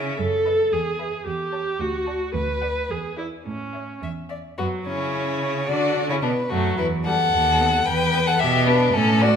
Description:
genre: quick classical-period movement for string quartet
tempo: 110 BPM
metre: 2/4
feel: straight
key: A major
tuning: A4 = 440 Hz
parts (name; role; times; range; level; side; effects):
- rich violin; melody; 0.0-9.4 s; A3 to A5; -25 LUFS; left 5 dB; none
- rich violin; second line; 0.0-9.4 s; F#4 to G5; -24 LUFS; left 2 dB; none
- warm viola; accompaniment; 0.0-9.3 s; F#3 to B4; -26 LUFS; right 1 dB; none
- rich cello; bass; 0.0-9.4 s; D2 to D3; -25 LUFS; right 3 dB; none
room: wet recital hall reverb, RT60 1.5 s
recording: minimal, uncompressed stereo recording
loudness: -20 LUFS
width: side -7 dB against mid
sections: 0.0-4.6 A section; 4.6-9.4 B section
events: none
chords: 0.2 B7/F#; 0.7 E; 1.3 A7/E; 1.8 D; 2.3 Bm/D; 2.9 E7; 3.5 A; 4.6 N.C.; 5.1 C#m; 5.7 Bm; 6.8 Em; 7.3 B7/D#; 7.9 E5

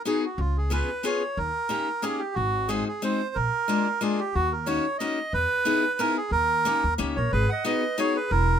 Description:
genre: musette waltz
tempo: 182 BPM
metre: 3/4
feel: swing 55% on 8ths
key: G# minor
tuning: A4 = 443 Hz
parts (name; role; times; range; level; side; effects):
- bandoneon; melody; 0.0-8.6 s; E#4 to F#5; -26 LUFS; right 2 dB; none
- picked steel-string acoustic guitar; accompaniment; 0.1-8.2 s; G#3 to G#4; -27 LUFS; left 5 dB; none
- upright bass; bass; 0.4-8.6 s; E1 to E2; -27 LUFS; equal; none
- warm clarinet; second line; 7.2-8.6 s; E4 to D#5; -30 LUFS; right 5 dB; none
room: light reverb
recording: minimal, uncompressed stereo recording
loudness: -23 LUFS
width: side -8 dB against mid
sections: 0.0-8.6 A section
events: none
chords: 0.4 C#7; 1.4 D#7; 2.4 G#7; 3.3 A#7; 4.3 D#m7; 5.3 Emaj7; 6.3 D#7; 7.3 G#m7

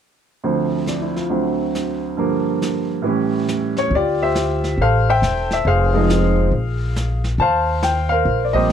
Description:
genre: jazz piano trio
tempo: 138 BPM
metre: 4/4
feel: swing 65% on 8ths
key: D minor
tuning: A4 = 440 Hz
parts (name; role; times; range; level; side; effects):
- clear baby grand piano; melody; 0.4-8.7 s; D2 to A5; -18 LUFS; equal; none
- vintage brush drum kit; drums; 0.4-8.7 s; brushed snare drum, hi-hat, kick drum, snare drum; -29 LUFS; right 1 dB; none
- upright bass; bass; 3.9-8.7 s; E1 to Eb2; -20 LUFS; equal; none
room: light reverb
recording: dark, warm production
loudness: -17 LUFS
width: side -8 dB against mid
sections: 0.4-3.9 A section; 3.9-8.7 B section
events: none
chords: 0.4 Dm7; 1.3 D7; 2.2 Gm7; 3.1 A7; 3.9 Dm11; 5.7 Fm7; 6.5 Bb5; 7.4 Eb69

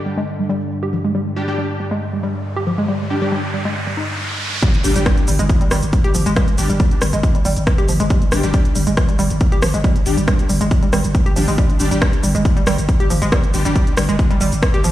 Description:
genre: driving peak-time techno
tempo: 138 BPM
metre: 4/4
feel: straight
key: unclear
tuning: A4 = 441 Hz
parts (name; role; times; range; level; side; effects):
- analog drone; drone; 0.0-4.2 s; G2 to D3; -25 LUFS; equal; chorus, sidechain pumping
- warbly dusty pluck; riff; 0.1-14.9 s; F3 to G4; -22 LUFS; equal; chorus, tube saturation, sidechain pumping, dub echo
- techno drum kit; drums; 0.1-14.9 s; hi-hat, rim click, shaker; -24 LUFS; equal; overdrive, low-pass filter on hats, low-pass filter on perc, low-pass filter on snare
- riser and impact; sound effects; 2.3-6.4 s; none; -25 LUFS; equal; none
- rave stab; stabs; 1.4-13.8 s; G3 to G4; -25 LUFS; left 1 dB; chorus, built-in reverb, vintage 12-bit sampler grit, sidechain pumping, dub echo
- electronic kick drum; drums; 4.6-14.7 s; none; -16 LUFS; equal; overdrive
- growling 808-style bass; bass; 4.7-14.9 s; G1; -20 LUFS; equal; overdrive, sidechain pumping, low-pass filter
room: light reverb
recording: played on a big sound system in a bare room, stone room reverb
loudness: -15 LUFS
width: side -14 dB against mid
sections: 0.0-4.6 A section; 4.6-14.9 B section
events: filter sweep on synth arpeggio sound 0.0-4.6; riser 2.3-4.6; drop 4.6-14.9; impact 4.6-6.4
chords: 0.0 G5

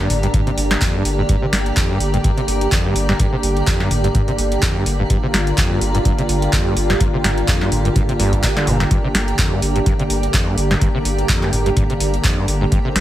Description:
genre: acid house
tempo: 126 BPM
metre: 4/4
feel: swing 56% on 16ths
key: G minor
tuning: A4 = 440 Hz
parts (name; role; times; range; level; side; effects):
- warm analog pad; sustained chords; 0.0-13.0 s; D3 to C5; -23 LUFS; equal; wide subtle chorus, sidechain pumping
- overdriven acid bass; riff; 0.0-12.9 s; F2 to D3; -22 LUFS; equal; distortion, tube saturation, wide subtle chorus, vintage 12-bit sampler grit, sidechain pumping
- granular cloud pad; texture; 0.0-13.0 s; G4 to Bb5; -25 LUFS; right 2 dB; built-in reverb, sidechain pumping
- round analog bass; bass; 0.1-13.0 s; G1; -21 LUFS; equal; sidechain pumping
- booming analog drum machine; drums; 0.1-13.0 s; handclaps, hi-hat, snare drum, toms; -22 LUFS; equal; none
- electronic kick drum; drums; 0.3-12.8 s; none; -19 LUFS; equal; none
room: light reverb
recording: none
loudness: -15 LUFS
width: side -13 dB against mid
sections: 0.0-13.0 A section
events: none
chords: 0.0 Gm

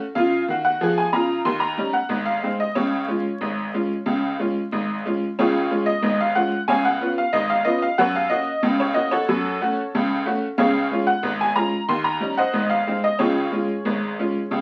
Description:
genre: ragtime piano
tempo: 92 BPM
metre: 2/4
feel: straight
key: Db major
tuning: A4 = 440 Hz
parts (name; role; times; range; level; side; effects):
- tack piano; solo; 0.0-14.6 s; Ab1 to C6; -22 LUFS; equal; none
room: wet studio reverb, RT60 0.5 s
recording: very old 78 rpm record, vinyl crackle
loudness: -22 LUFS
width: mono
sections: 0.0-5.4 A section; 5.4-14.6 A section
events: none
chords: 0.2 Db; 1.5 Eb7; 2.1 Ab; 2.8 Db; 6.7 Db7; 8.0 Gb; 9.3 Gbm; 10.6 Db; 11.9 Eb7; 12.5 Ab; 13.2 Db

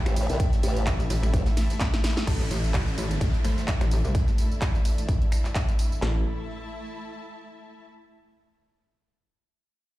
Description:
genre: bass house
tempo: 128 BPM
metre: 4/4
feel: swing 56% on 16ths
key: unclear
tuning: A4 = 441 Hz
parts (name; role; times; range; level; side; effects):
- dark analog pad; sustained chords; 0.0-6.2 s; E3 to G5; -38 LUFS; right 1 dB; chorus, sidechain pumping
- rich symphonic string section; texture; 0.0-7.9 s; A3 to A5; -38 LUFS; equal; sidechain pumping
- formant-sweep wobble bass; bass; 0.1-1.4 s; A1 to C2; -26 LUFS; equal; chorus, tube saturation, sidechain pumping
- big-room dance drum kit; drums; 0.1-6.0 s; crash cymbal, finger snaps, handclaps, hi-hat, ride cymbal, snare drum, tambourine; -33 LUFS; equal; none
- jazz brush drum kit; drums; 0.2-5.9 s; hi-hat, snare drum; -44 LUFS; right 2 dB; none
- big-room dance drum kit; drums; 0.4-6.1 s; handclaps, kick drum, snare drum; -25 LUFS; equal; none
- metallic wobble bass; bass; 0.9-6.2 s; A1 to C2; -25 LUFS; equal; chorus, tube saturation, sidechain pumping
- orchestra-hit-like synth stab; stabs; 2.3-6.2 s; E3 to C5; -38 LUFS; left 2 dB; built-in reverb, sidechain pumping, digital delay
- downlifter; sound effects; 2.3-6.0 s; none; -40 LUFS; equal; none
room: small room ambience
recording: played on a big sound system in a bare room, large studio reverb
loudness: -22 LUFS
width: side -17 dB against mid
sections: 0.0-2.3 A section; 2.3-6.0 B section; 6.0-7.9 C section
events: drop 0.0-2.3; drum fill 1.6-2.3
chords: 0.0 A5

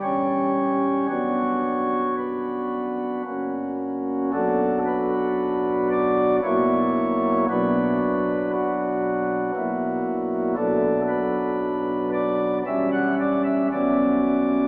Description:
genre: classical, chorale-style piece for pipe organ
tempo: 57 BPM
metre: 3/4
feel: straight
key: B minor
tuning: A4 = 440 Hz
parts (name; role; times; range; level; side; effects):
- pipe organ, flutes; solo; 0.0-14.7 s; E1 to F#5; -23 LUFS; equal; none
room: wet cathedral reverb, RT60 4.7 s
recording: recorded in a church or concert hall, small speaker sound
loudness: -23 LUFS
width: mono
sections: 0.0-4.3 A section; 4.3-14.7 B section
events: none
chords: 0.0 C#dim/E; 1.1 Bm/F#; 3.3 F#; 4.3 Bm; 6.4 F#7/B; 7.5 Bm; 9.5 F#7/B; 10.6 Bm; 12.7 C#dim/E; 13.7 F#sus4

